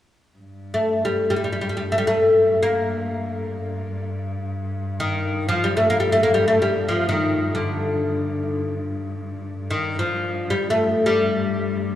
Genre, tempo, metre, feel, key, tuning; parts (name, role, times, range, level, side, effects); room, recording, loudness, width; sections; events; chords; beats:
Turkish makam ensemble; free time; G makam nihavent; A4 = 441 Hz
clear cello; drone; 0.4-12.0 s; G2; -29 LUFS; equal
oud; melody; 0.7-12.0 s; D3 to Bb3; -20 LUFS; left 1 dB
wet cathedral reverb, RT60 5.1 s; recorded in a church or concert hall, small room ambience; -19 LUFS; side -12 dB against mid
0.4-12.0 A section
free time